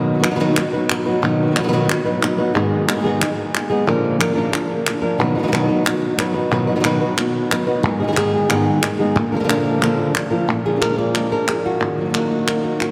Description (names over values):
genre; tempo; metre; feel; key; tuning
flamenco; 181 BPM; 4/4; straight; Bb phrygian dominant; A4 = 435 Hz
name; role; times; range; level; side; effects
flamenco guitar; melody; 0.0-12.9 s; Ab2 to D5; -21 LUFS; equal; delay
flamenco guitar; stabs; 0.1-12.8 s; Ab2 to Ab4; -25 LUFS; equal; ensemble chorus
palmas hand claps; percussion; 0.2-12.9 s; none; -26 LUFS; equal; none
room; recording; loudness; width
wet cathedral reverb, RT60 4.9 s; dreamy mix soaked in reverb; -19 LUFS; mono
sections
0.0-10.5 A section; 10.5-12.9 B section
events
none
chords
0.0 B; 2.6 Abm; 3.9 Bb; 5.2 B; 7.8 Abm; 9.2 Bb; 10.5 Bb7; 11.8 Ebm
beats
0.23 0.56 0.90 | 1.23 1.56 1.89 2.22 | 2.55 2.88 3.21 3.54 | 3.88 4.21 4.54 4.87 | 5.20 5.53 5.86 6.19 | 6.52 6.85 7.18 7.51 | 7.84 8.17 8.50 8.83 | 9.16 9.49 9.82 10.15 | 10.48 10.81 11.14 11.47 | 11.81 12.14 12.47 12.80